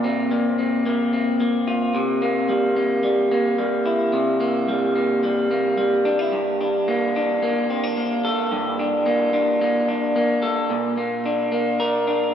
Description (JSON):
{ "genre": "indie pop", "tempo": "110 BPM", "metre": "4/4", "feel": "straight", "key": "unclear", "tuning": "A4 = 445 Hz", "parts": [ { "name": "electric guitar through a small old amp", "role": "solo", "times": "0.0-12.3 s", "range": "G2 to Bb4", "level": "-19 LUFS", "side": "equal", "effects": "none" } ], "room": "wet lush hall reverb, RT60 2.6 s", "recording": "dreamy mix soaked in reverb, nothing above 7.6 kHz", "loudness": "-19 LUFS", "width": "side -8 dB against mid", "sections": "0.0-10.7 A section; 10.7-12.3 B section", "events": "none", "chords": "0.0 Bbsus2; 2.0 C7; 6.3 Gmadd9; 10.7 Bb" }